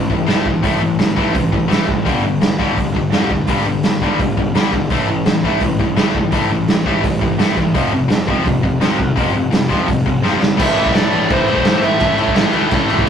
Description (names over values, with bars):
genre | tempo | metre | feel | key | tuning
punk rock | 169 BPM | 4/4 | straight | A minor | A4 = 440 Hz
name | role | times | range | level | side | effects
overdriven electric guitar | riff | 0.0-13.1 s | F2 to A3 | -21 LUFS | right 3 dB | none
tight distorted guitar | riff | 0.0-13.1 s | F2 to A3 | -20 LUFS | left 7 dB | distortion
fuzz picked electric bass | bass | 0.0-13.1 s | E1 to A2 | -23 LUFS | equal | overdrive
raw garage drum kit | drums | 0.1-13.1 s | crash cymbal, hi-hat, kick drum, snare drum | -17 LUFS | right 1 dB | none
dark smooth lead guitar | melody | 10.6-12.2 s | C5 to E5 | -18 LUFS | right 1 dB | overdrive
distorted electric guitar | riff | 10.6-13.1 s | A2 to A3 | -21 LUFS | right 2 dB | distortion
room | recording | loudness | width
light reverb | rough rehearsal-room recording, tube saturation | -13 LUFS | side -8 dB against mid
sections
0.0-10.6 A section; 10.6-13.1 B section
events
drum fill 10.2-10.6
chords
0.0 A5; 2.1 G5; 4.9 A5; 7.7 F5; 10.6 Am